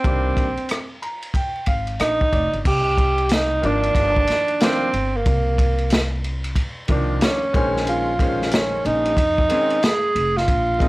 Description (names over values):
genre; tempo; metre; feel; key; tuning
hip hop, jazz-hop; 92 BPM; 4/4; swing 63% on 16ths; unclear; A4 = 440 Hz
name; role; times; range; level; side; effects
breathy tenor saxophone; melody; 0.0-10.9 s; Bb3 to Ab4; -20 LUFS; right 1 dB; none
bright upright piano; accompaniment; 0.0-10.9 s; Eb3 to Bb5; -26 LUFS; left 1 dB; none
upright bass; bass; 0.0-10.9 s; F1 to F2; -25 LUFS; equal; transformer saturation
crunchy breakbeat drum kit; drums; 0.0-10.9 s; crash cymbal, hi-hat, kick drum, ride cymbal, rim click, snare drum; -22 LUFS; equal; none
room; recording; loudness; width
light reverb; dry, gritty hardware recording, vinyl crackle; -17 LUFS; side -20 dB against mid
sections
0.0-2.7 A section; 2.7-10.9 B section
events
upright piano fill 0.7-2.7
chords
0.0 Cm9; 2.7 Cm11; 7.5 Bbm11